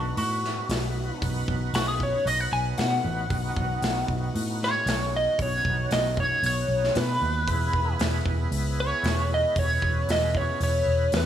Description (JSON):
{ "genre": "blues rock power trio and southern rock", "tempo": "115 BPM", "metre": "4/4", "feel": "straight", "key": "B mixolydian", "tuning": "A4 = 440 Hz", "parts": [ { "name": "lightly driven lead guitar", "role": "melody", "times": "0.0-11.3 s", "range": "D4 to G#5", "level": "-26 LUFS", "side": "equal", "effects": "wah" }, { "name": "overdriven tonewheel organ", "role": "sustained chords", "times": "0.0-11.3 s", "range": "B3 to B4", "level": "-35 LUFS", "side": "right 3 dB", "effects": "slow rotary speaker, chorus vibrato" }, { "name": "vintage muted picked electric bass", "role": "bass", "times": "0.0-11.3 s", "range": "E1 to B2", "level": "-28 LUFS", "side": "equal", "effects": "none" }, { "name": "big rock drum kit", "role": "drums", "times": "0.2-11.3 s", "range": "hi-hat, kick drum, snare drum", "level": "-30 LUFS", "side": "left 1 dB", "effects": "none" } ], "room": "light reverb, small room reverb", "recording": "none", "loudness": "-23 LUFS", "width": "side -10 dB against mid", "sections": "0.0-11.3 A section", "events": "lead electric guitar solo 0.0-11.3", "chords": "0.0 B; 7.5 E", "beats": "0.17 0.70 | 1.22 1.74 2.26 2.78 | 3.30 3.82 4.34 4.87 | 5.39 5.91 6.43 6.95 | 7.47 8.00 8.52 9.04 | 9.56 10.08 10.61 11.13" }